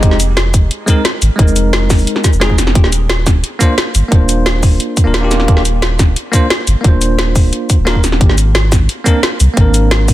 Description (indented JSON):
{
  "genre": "liquid drum and bass",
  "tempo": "176 BPM",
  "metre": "4/4",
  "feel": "straight",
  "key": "unclear",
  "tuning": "A4 = 440 Hz",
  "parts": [
    { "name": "bell-like tine electric piano", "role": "accompaniment", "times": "0.0-10.1 s", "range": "Ab3 to C5", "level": "-17 LUFS", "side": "equal", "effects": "fast stereo tremolo, vintage 12-bit sampler grit, dub echo" },
    { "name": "warm sub bass", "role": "bass", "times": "0.0-10.1 s", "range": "Eb1 to C2", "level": "-13 LUFS", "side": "equal", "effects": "none" },
    { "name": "drum and bass drum kit", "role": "drums", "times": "0.0-10.1 s", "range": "cabasa, hi-hat, snare drum", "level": "-16 LUFS", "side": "equal", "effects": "none" },
    { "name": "electronic kick drum", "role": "drums", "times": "0.0-10.1 s", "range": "none", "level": "-10 LUFS", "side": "equal", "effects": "none" }
  ],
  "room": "light reverb",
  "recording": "dense, heavily limited modern master",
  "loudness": "-9 LUFS",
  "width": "side -15 dB against mid",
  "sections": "0.0-10.1 A section",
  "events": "none",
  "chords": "0.0 Fm7; 2.8 Ebmaj7(no3); 8.2 Abadd9(#11)"
}